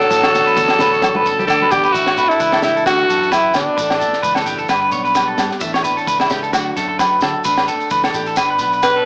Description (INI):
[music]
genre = highlife guitar band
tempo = 131 BPM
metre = 4/4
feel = swing 55% on 16ths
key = A mixolydian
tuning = A4 = 441 Hz
[part]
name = raspy alto saxophone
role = melody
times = 0.0-4.4, 8.8-9.1 s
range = D4 to B4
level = -14 LUFS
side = equal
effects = none
[part]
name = raspy tenor saxophone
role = second line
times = 0.0-1.5 s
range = F#3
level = -23 LUFS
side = equal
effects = cassette tape, tape echo
[part]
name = picked steel-string acoustic guitar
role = accompaniment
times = 0.0-9.1 s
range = F#2 to A4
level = -27 LUFS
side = equal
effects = cassette tape
[part]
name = tight funk drum kit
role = drums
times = 0.0-8.9 s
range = kick drum, snare drum, toms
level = -25 LUFS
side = equal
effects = cassette tape
[part]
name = electric guitar at the edge of break-up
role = arpeggios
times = 0.1-9.1 s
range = E4 to E5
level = -17 LUFS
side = right 1 dB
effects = cassette tape
[part]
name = fingered electric bass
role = bass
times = 0.1-9.0 s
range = F#1 to D3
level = -32 LUFS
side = equal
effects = none
[part]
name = shekere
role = percussion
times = 0.1-8.9 s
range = none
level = -28 LUFS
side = equal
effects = none
[part]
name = agogo bells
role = percussion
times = 0.2-9.0 s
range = none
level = -22 LUFS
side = equal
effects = none
[part]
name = congas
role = percussion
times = 0.3-1.8 s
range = none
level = -28 LUFS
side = equal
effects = none
[sound]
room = moderate spring reverb, RT60 1.7 s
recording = home recording on cassette, small speaker sound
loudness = -13 LUFS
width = side -30 dB against mid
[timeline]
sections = 0.0-1.9 A section; 1.9-9.1 B section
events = drum fill 1.5-1.9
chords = 0.1 Asus4; 1.0 G; 1.5 Dsus2; 1.9 Asus4; 2.9 Dadd9; 3.8 Asus4; 4.7 G; 5.6 Asus4; 6.5 Dadd9; 7.5 Asus4; 8.4 G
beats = | 0.11 0.57 1.03 1.49 | 1.95 2.41 2.87 3.32 | 3.78 4.24 4.70 5.16 | 5.62 6.08 6.54 7.00 | 7.46 7.91 8.37 8.83